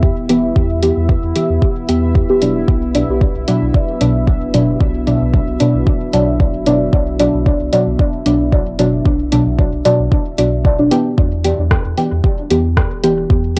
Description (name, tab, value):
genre	dub techno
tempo	113 BPM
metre	4/4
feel	swing 54% on 16ths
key	E minor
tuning	A4 = 440 Hz
part	deep dark ambient pad	sustained chords	0.0-13.6 s	B3 to G4	-26 LUFS	equal	chorus, built-in reverb, sidechain pumping, cassette tape
part	pure sine sub bass	bass	0.0-13.6 s	E1 to E2	-23 LUFS	equal	sidechain pumping
part	electronic kick drum	drums	0.0-13.4 s	none	-17 LUFS	equal	overdrive, cassette tape
part	bubbling stepped-filter texture	texture	0.0-11.2 s	E4 to E5	-30 LUFS	equal	chorus, built-in reverb, sidechain pumping, cassette tape
part	deep mellow chord stab	stabs	0.3-13.6 s	B2 to G4	-18 LUFS	equal	chorus, phaser, sidechain pumping, cassette tape, dub echo
part	punchy analog drum machine	drums	0.3-13.6 s	hi-hat, rim click	-26 LUFS	equal	cassette tape
room	light reverb, digital ambience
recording	home recording on cassette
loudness	-15 LUFS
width	mono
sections	0.0-11.2 A section; 11.2-13.6 A section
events	none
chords	0.0 Em; 2.7 Bm; 11.2 Em